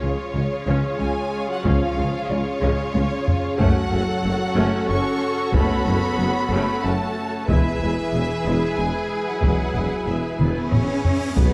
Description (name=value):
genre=cinematic, epic orchestral film score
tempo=93 BPM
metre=3/4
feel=straight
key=unclear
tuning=A4 = 440 Hz
part: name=warm symphonic violin section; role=melody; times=0.0-11.5 s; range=B4 to C#6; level=-32 LUFS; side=equal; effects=none
part: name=rich chamber violin section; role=second line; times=0.0-11.5 s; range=E#4 to C#5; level=-32 LUFS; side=equal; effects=none
part: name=rich studio viola section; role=accompaniment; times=0.0-11.5 s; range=G#3 to G#4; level=-32 LUFS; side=equal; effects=none
part: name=rich symphonic string section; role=sustained chords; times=0.0-11.5 s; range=C#4 to G#5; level=-32 LUFS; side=equal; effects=none
part: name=warm trombone section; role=sustained chords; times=0.0-11.5 s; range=C#3 to C#4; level=-31 LUFS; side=equal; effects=none
part: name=clear symphonic double bass section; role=bass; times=0.0-11.4 s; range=E1 to C#2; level=-30 LUFS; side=equal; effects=none
part: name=rich symphonic cello section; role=bass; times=0.0-11.5 s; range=E2 to C#4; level=-30 LUFS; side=equal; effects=none
part: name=warm tuba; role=bass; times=0.0-11.5 s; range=E1 to C#2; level=-32 LUFS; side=equal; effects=none
part: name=mellow French horn section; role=sustained chords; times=1.6-11.5 s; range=E#3 to B4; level=-36 LUFS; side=equal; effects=none
part: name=taiko ensemble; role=drums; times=1.6-11.5 s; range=none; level=-25 LUFS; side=equal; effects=none
part: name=cymbal swell and impact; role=sound effects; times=10.7-11.5 s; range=none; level=-35 LUFS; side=equal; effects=none
room=moderate scoring stage reverb, RT60 1.9 s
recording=dark, warm production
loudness=-22 LUFS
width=mono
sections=0.0-11.4 A section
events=drum fill 2.6-3.6, 10.4-11.4; cymbal swell 10.7-11.4; impact 11.4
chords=0.0 C#; 3.6 F#m; 7.5 E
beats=0.36 1.00 | 1.65 2.30 2.95 | 3.60 4.25 4.89 | 5.54 6.19 6.84 | 7.49 8.13 8.78 | 9.43 10.07 10.72 | 11.37